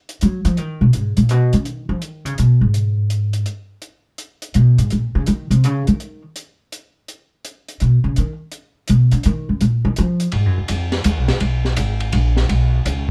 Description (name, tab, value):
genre	modal jazz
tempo	166 BPM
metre	3/4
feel	swing 66% on 8ths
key	G# dorian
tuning	A4 = 439 Hz
part	open jazz drum kit	drums	0.1-13.1 s	hi-hat, kick drum, ride cymbal, snare drum	-29 LUFS	equal	none
part	upright bass	bass	0.2-13.1 s	G#1 to F#3	-18 LUFS	equal	none
room	light reverb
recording	none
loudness	-18 LUFS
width	mono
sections	0.0-10.3 A section; 10.3-13.1 B section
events	upright bass solo 0.0-10.3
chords	none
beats	0.21 | 0.57 0.94 1.30 | 1.66 2.02 2.38 | 2.74 3.10 3.47 | 3.83 4.19 4.55 | 4.91 5.27 5.63 | 6.00 6.36 6.72 | 7.08 7.44 7.80 | 8.16 8.52 8.88 | 9.25 9.61 9.97 | 10.33 10.69 11.05 | 11.41 11.77 12.13 | 12.49 12.86